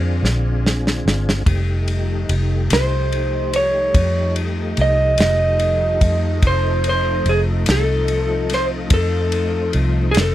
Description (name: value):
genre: slow blues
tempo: 48 BPM (dotted quarters)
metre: 12/8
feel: straight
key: unclear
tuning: A4 = 442 Hz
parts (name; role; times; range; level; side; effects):
- analog string pad; sustained chords; 0.0-10.3 s; D3 to Eb4; -28 LUFS; left 1 dB; ensemble chorus
- tonewheel organ; sustained chords; 0.0-10.3 s; F3 to Ab4; -29 LUFS; left 1 dB; slow rotary speaker, chorus vibrato
- vintage muted fingered electric bass; bass; 0.0-10.3 s; F1 to F2; -19 LUFS; equal; none
- warm soul drum kit; drums; 0.2-10.3 s; kick drum, ride cymbal, snare drum; -22 LUFS; equal; none
- electric guitar through a small old amp; melody; 2.7-10.3 s; Ab4 to Eb5; -19 LUFS; right 1 dB; none
room: light reverb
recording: none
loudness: -16 LUFS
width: side -13 dB against mid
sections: 0.0-10.3 A section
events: drum fill 0.2-1.5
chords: 0.0 Bb9; 1.5 F9